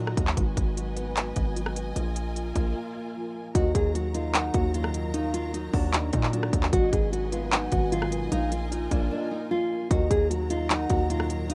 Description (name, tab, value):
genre	hip hop, trap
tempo	151 BPM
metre	4/4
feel	half-time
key	Eb minor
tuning	A4 = 437 Hz
part	dark concert grand piano	accompaniment	0.0-11.5 s	Ab2 to Gb4	-37 LUFS	equal	none
part	warm symphonic string section	sustained chords	0.0-11.5 s	Gb3 to Bb5	-41 LUFS	equal	none
part	hard-hitting 808-style bass	bass	0.0-11.5 s	Ab1 to Bb2	-31 LUFS	equal	none
part	trap drum kit	drums	0.1-11.5 s	handclaps, hi-hat, kick drum, rim click	-30 LUFS	equal	vintage 12-bit sampler grit
part	nylon-string guitar	melody	3.5-11.5 s	D4 to Ab4	-31 LUFS	equal	tape echo
part	hollow clarinet-like synth lead	second line	3.5-11.5 s	Eb5 to Gb5	-39 LUFS	equal	chorus, plate reverb, tape echo
part	mellow synth brass	stabs	4.5-5.1, 7.7-8.3, 10.9-11.5 s	Gb2 to Eb3	-40 LUFS	equal	none
room	light reverb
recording	rough home demo mix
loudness	-27 LUFS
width	mono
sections	0.0-3.5 A section; 3.5-11.5 B section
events	break 2.8-3.5; drums muted 9.1-9.9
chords	0.4 Abm7; 2.0 Bb7sus4; 3.5 Ebm; 6.7 Abm7; 8.3 Bb7sus4; 9.9 Ebm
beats	| 0.37 0.77 1.17 1.56 | 1.96 2.36 2.75 3.15 | 3.55 3.95 4.34 4.74 | 5.14 5.54 5.93 6.33 | 6.73 7.13 7.52 7.92 | 8.32 8.71 9.11 9.51 | 9.91 10.30 10.70 11.10 | 11.50